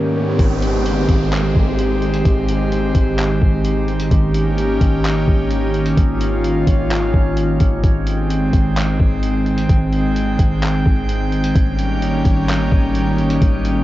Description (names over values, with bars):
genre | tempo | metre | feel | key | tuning
hip hop, atmospheric cloud-rap | 129 BPM | 4/4 | half-time | Ab major | A4 = 440 Hz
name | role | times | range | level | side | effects
concert harp | melody | 0.0-1.6 s | Bb4 to Db5 | -28 LUFS | left 6 dB | cassette tape, tape echo
airy breathy pad | sustained chords | 0.0-13.8 s | Ab2 to G5 | -18 LUFS | equal | chorus, sidechain pumping, cassette tape
riser and downlifter | sound effects | 0.0-4.1 s | none | -27 LUFS | right 1 dB | none
drifting glass-harmonics texture | texture | 0.0-13.8 s | Ab2 to G5 | -28 LUFS | equal | chorus, built-in reverb, cassette tape
soft 808-style bass | bass | 0.4-13.8 s | Ab1 | -20 LUFS | equal | none
lo-fi sampler-style drum kit | drums | 0.4-13.8 s | handclaps, hi-hat, kick drum | -18 LUFS | equal | cassette tape
room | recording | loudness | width
digital ambience | home recording on cassette, nothing above 7.8 kHz | -14 LUFS | side -15 dB against mid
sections
0.4-13.8 A section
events
riser 0.0-0.4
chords
0.4 Abmaj7; 4.1 Eb7/Ab; 7.8 Abmaj7; 11.6 Eb7/Ab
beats
| 0.39 0.86 1.32 1.79 | 2.25 2.72 3.18 3.65 | 4.11 4.58 5.04 5.51 | 5.97 6.44 6.90 7.37 | 7.83 8.30 8.76 9.23 | 9.69 10.16 10.62 11.09 | 11.55 12.02 12.48 12.95 | 13.41